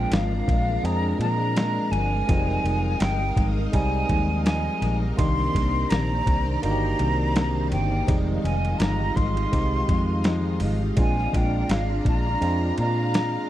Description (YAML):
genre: indie pop, bedroom pop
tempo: 83 BPM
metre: 4/4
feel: swing 55% on 16ths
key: unclear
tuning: A4 = 440 Hz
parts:
  - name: hollow concert flute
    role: melody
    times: 0.0-13.5 s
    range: F5 to C6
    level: -28 LUFS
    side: equal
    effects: wide subtle chorus, slapback echo
  - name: barky tine electric piano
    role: accompaniment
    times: 0.0-13.5 s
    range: G3 to Ab4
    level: -30 LUFS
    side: right 3 dB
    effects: overdrive, cassette tape
  - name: picked steel-string acoustic guitar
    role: accompaniment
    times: 0.0-13.5 s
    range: Bb2 to G4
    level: -30 LUFS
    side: left 3 dB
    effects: wide subtle chorus, warbly pitch drift
  - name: string machine, violins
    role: sustained chords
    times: 0.0-13.5 s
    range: Eb3 to Bb5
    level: -34 LUFS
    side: equal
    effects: ensemble chorus
  - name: vintage muted fingered electric bass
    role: bass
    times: 0.0-13.4 s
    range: F1 to Bb2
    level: -25 LUFS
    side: equal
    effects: none
  - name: lo-fi sampler-style drum kit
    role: drums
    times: 0.1-13.3 s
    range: hi-hat, kick drum, ride cymbal, snare drum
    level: -24 LUFS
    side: equal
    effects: overdrive
room: little or no reverb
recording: dry, close 1970s-style studio recording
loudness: -21 LUFS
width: side -13 dB against mid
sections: 0.0-13.5 A section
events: none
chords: 0.0 Bb7; 2.3 Fm9; 5.2 Cm9; 8.1 Fm9; 11.0 Bb7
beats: 0.12 0.84 1.56 | 2.29 3.01 3.74 4.46 | 5.18 5.91 6.63 7.36 | 8.08 8.80 9.53 10.25 | 10.97 11.70 12.42 13.14